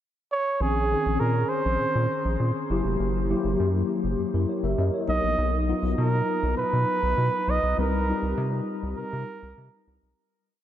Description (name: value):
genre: polished 1980s jazz-funk pop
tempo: 100 BPM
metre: 4/4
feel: straight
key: unclear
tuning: A4 = 440 Hz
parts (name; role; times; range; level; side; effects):
- breathy flugelhorn; melody; 0.3-9.8 s; Ab4 to D#5; -28 LUFS; right 3 dB; tape echo
- mellow tine electric piano; accompaniment; 0.6-10.2 s; Eb3 to Fb5; -28 LUFS; left 2 dB; medium stereo tremolo, ensemble chorus
- round analog bass; bass; 0.6-10.1 s; F1 to C3; -26 LUFS; equal; none
room: moderate huge ambient reverb, RT60 8.4 s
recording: dreamy mix soaked in reverb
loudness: -23 LUFS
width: side -11 dB against mid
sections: 0.0-0.6 pickup bar; 0.6-10.2 verse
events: fade-out 7.8-10.2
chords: 0.0 N.C.; 0.6 Bbm11; 2.7 Gb7b9; 5.1 Bmaj7; 7.8 Cm7